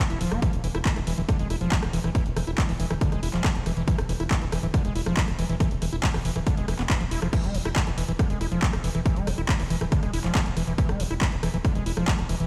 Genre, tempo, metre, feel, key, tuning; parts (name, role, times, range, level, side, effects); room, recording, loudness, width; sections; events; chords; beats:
psychedelic trance; 139 BPM; 4/4; straight; A4 = 439 Hz
overdriven acid bass; riff; 0.0-12.5 s; D3 to E4; -32 LUFS; equal; cassette tape, sidechain pumping, delay
round analog bass; bass; 0.1-12.5 s; D1 to E1; -31 LUFS; equal
techno drum kit; drums; 0.1-12.5 s; crash cymbal, handclaps, hi-hat, rim click; -34 LUFS; equal; overdrive, studio reverb
electronic kick drum; drums; 0.4-12.2 s; -27 LUFS; equal; overdrive, studio reverb
light reverb, digital ambience; played on a big sound system in a bare room, stone room reverb; -25 LUFS; mono
0.0-12.5 A section
0.0 E5
| 0.42 0.85 1.29 1.72 | 2.15 2.58 3.01 3.44 | 3.88 4.31 4.74 5.17 | 5.60 6.04 6.47 6.90 | 7.33 7.76 8.19 8.62 | 9.06 9.49 9.92 10.35 | 10.78 11.21 11.65 12.08